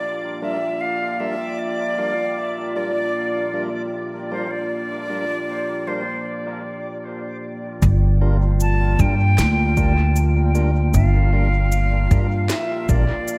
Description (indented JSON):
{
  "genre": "ambient dub",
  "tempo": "77 BPM",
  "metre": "4/4",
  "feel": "straight",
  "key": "G minor",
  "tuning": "A4 = 440 Hz",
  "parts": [
    { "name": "breathy bright concert flute", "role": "melody", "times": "0.0-13.4 s", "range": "C5 to A5", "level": "-28 LUFS", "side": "equal", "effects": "dub echo" },
    { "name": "deep dark ambient pad", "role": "sustained chords", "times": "0.0-13.4 s", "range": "Bb3 to G5", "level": "-31 LUFS", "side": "equal", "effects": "chorus, built-in reverb" },
    { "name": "backwards swelling texture", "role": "texture", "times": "0.0-6.3 s", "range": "D5", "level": "-39 LUFS", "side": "equal", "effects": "built-in reverb, subtle chorus" },
    { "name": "tonewheel organ", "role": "stabs", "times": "0.4-13.1 s", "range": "G3 to Bb4", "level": "-35 LUFS", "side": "equal", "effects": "overdrive, stopped rotary speaker, dub echo" },
    { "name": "upright bass", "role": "bass", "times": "7.8-13.1 s", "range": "G1 to G2", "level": "-19 LUFS", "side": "equal", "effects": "none" },
    { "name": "electronic cabasa and snare drum", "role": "drums", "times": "7.8-13.4 s", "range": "none", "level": "-32 LUFS", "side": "equal", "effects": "low-pass filter on perc, studio reverb, low-pass filter on snare, dub echo" },
    { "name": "electronic kick drum", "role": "drums", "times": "7.8-13.0 s", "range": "none", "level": "-24 LUFS", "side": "equal", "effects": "studio reverb" }
  ],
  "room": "moderate lush hall reverb, RT60 1.7 s",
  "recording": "dreamy mix soaked in reverb",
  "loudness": "-20 LUFS",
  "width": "mono",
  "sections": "0.0-7.8 A section; 7.8-13.4 B section",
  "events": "break 6.3-7.8",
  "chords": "0.0 Gm7"
}